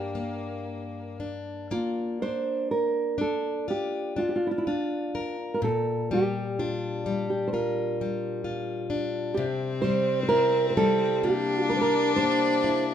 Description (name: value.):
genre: celtic folk, Celtic slow air.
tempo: 56-67 BPM.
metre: 4/4.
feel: rubato.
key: unclear.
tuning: A4 = 442 Hz.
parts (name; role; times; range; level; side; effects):
nylon-string guitar; melody; 0.0-12.8 s; D4 to C5; -27 LUFS; right 3 dB; none.
rich fiddle; second line; 0.0-1.2, 9.4-12.9 s; Bb3 to D4; -28 LUFS; left 5 dB; none.
fingerpicked plugged-in steel-string acoustic guitar; accompaniment; 0.0-12.9 s; G2 to Bb4; -30 LUFS; left 3 dB; none.
room: light reverb.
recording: minimal, uncompressed stereo recording.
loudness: -24 LUFS.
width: side -9 dB against mid.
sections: 0.0-1.7 A section; 1.7-12.9 B section.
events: none.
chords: 0.0 Gm; 1.7 Bb; 5.6 Gm7/Bb; 9.4 C7.